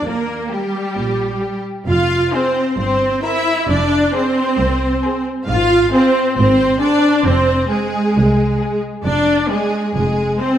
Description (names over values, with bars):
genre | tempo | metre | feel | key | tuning
quick classical-period movement for string orchestra | 134 BPM | 4/4 | rubato | unclear | A4 = 440 Hz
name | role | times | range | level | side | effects
clear symphonic violin section | second line | 0.0-10.6 s | G4 to F5 | -21 LUFS | left 1 dB | none
rich symphonic viola section | accompaniment | 0.0-10.6 s | G3 to F4 | -16 LUFS | equal | none
rich chamber double bass section | bass | 0.1-10.3 s | F1 to Eb2 | -22 LUFS | right 2 dB | none
rich symphonic cello section | bass | 0.1-10.3 s | C2 to Bb2 | -24 LUFS | right 2 dB | none
rich symphonic violin section | melody | 0.5-10.6 s | G4 to Bb4 | -32 LUFS | left 5 dB | none
room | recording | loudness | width
wet scoring stage reverb, RT60 1.6 s | none | -14 LUFS | side -10 dB against mid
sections
0.0-10.6 A section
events
none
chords
0.1 Eb; 1.9 Fm; 2.8 C7/G; 3.7 Fm; 5.5 Fm/Ab; 7.3 Fm; 9.1 Ddim/F